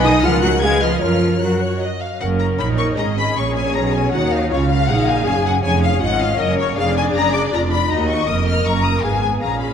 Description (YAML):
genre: quick classical-period movement for string orchestra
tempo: 157 BPM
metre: 3/4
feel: straight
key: F# major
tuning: A4 = 440 Hz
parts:
  - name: rich studio violin section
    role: melody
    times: 0.0-9.7 s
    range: C#5 to G#6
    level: -22 LUFS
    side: left 6 dB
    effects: none
  - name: warm studio violin section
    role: second line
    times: 0.0-9.7 s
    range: G#4 to Bb5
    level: -22 LUFS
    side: left 4 dB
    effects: none
  - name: rich studio viola section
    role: accompaniment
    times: 0.0-9.7 s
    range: Bb3 to A#4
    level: -21 LUFS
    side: equal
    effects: none
  - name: rich studio double bass section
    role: bass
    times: 0.0-9.7 s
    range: E#1 to F#2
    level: -21 LUFS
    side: right 3 dB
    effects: none
  - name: rich studio cello section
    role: bass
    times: 0.1-9.7 s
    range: Eb2 to G#3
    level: -23 LUFS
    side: right 3 dB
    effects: none
room: wet concert hall reverb, RT60 1.9 s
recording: dark, warm production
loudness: -15 LUFS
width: side -8 dB against mid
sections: 0.0-2.2 A section; 2.2-9.7 B section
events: none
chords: 0.2 F#/C#; 0.6 C#7; 1.0 F#; 3.4 F#/A#; 4.5 C#; 5.6 C#/E#; 6.8 Bb7b13/F; 7.9 Ebm; 9.0 Fdim/Ab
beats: 0.24 0.62 | 1.02 1.42 1.81 | 2.21 2.60 2.98 | 3.36 3.75 4.13 | 4.51 4.89 5.27 | 5.64 6.02 6.39 | 6.77 7.15 7.52 | 7.90 8.28 8.66 | 9.04 9.42